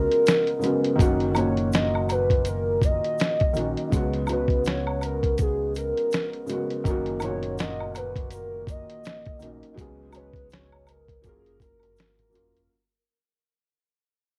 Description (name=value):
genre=lo-fi hip hop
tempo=82 BPM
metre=4/4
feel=swing 55% on 16ths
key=F# major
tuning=A4 = 440 Hz
part: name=warbly nostalgic lead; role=melody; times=0.0-12.7 s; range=G#4 to D#5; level=-29 LUFS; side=equal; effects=chorus, low-pass filter, cassette tape
part: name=felt-muted upright piano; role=accompaniment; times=0.0-12.7 s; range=A#2 to C#5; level=-31 LUFS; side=equal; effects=low-pass filter, cassette tape
part: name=deep dub fingered electric bass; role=bass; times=0.0-12.7 s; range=E#1 to C#2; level=-34 LUFS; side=equal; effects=none
part: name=dusty soul sampler-style drum kit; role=drums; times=0.1-12.7 s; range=hi-hat, kick drum, snare drum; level=-27 LUFS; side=equal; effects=none
part: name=tube shaker and woodblock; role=percussion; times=0.3-12.5 s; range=none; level=-37 LUFS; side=equal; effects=none
room=light reverb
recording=home recording on cassette, faint mains hum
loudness=-25 LUFS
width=mono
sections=0.0-12.7 A section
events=fade-out 0.0-12.7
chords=0.0 C#7sus4; 1.0 F#6; 3.9 C#7sus4; 6.9 F#6; 9.8 C#7sus4; 11.2 F#maj7